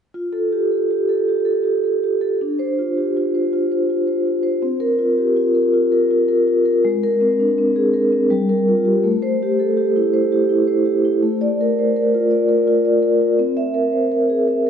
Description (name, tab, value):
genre	classical, contemporary piece for solo vibraphone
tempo	82 BPM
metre	3/4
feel	rubato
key	F major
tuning	A4 = 440 Hz
part	vibraphone with soft mallets	solo	0.1-14.7 s	G3 to E5	-16 LUFS	equal	none
room	wet church reverb, RT60 3.2 s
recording	dark, warm production, nothing above 11.0 kHz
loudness	-16 LUFS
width	side -8 dB against mid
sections	0.1-14.7 A section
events	none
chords	0.1 Fadd9; 2.4 Dm7; 4.6 C7sus4; 6.8 Abadd9; 8.3 Gm7; 9.0 Am7; 11.2 Bbmaj7/A; 13.4 Caug7